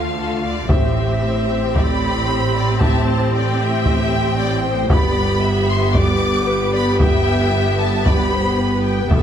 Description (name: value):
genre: cinematic, epic orchestral film score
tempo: 114 BPM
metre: 4/4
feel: straight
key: unclear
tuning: A4 = 440 Hz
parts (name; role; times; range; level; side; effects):
- clear symphonic violin section; melody; 0.0-9.2 s; E5 to D6; -24 LUFS; equal; none
- rich symphonic violin section; second line; 0.0-9.2 s; F4 to E5; -25 LUFS; left 4 dB; none
- clear symphonic viola section; accompaniment; 0.0-9.2 s; A3 to G4; -24 LUFS; equal; none
- mellow French horn section; sustained chords; 0.0-9.2 s; A3 to G4; -24 LUFS; left 3 dB; none
- rich symphonic cello section; bass; 0.0-9.2 s; E2 to D3; -23 LUFS; right 2 dB; none
- warm studio double bass section; bass; 0.0-9.2 s; E1 to D2; -23 LUFS; right 2 dB; none
- solo taiko drums; drums; 0.7-9.2 s; none; -19 LUFS; equal; none
room: light reverb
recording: close, detailed microphones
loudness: -15 LUFS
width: side -9 dB against mid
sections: 0.0-9.2 A section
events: none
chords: 0.0 Dm; 0.7 Am7; 4.9 G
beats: 0.17 | 0.70 1.23 1.76 2.29 | 2.81 3.34 3.86 4.39 | 4.91 5.43 5.96 6.48 | 7.01 7.54 8.06 8.59 | 9.11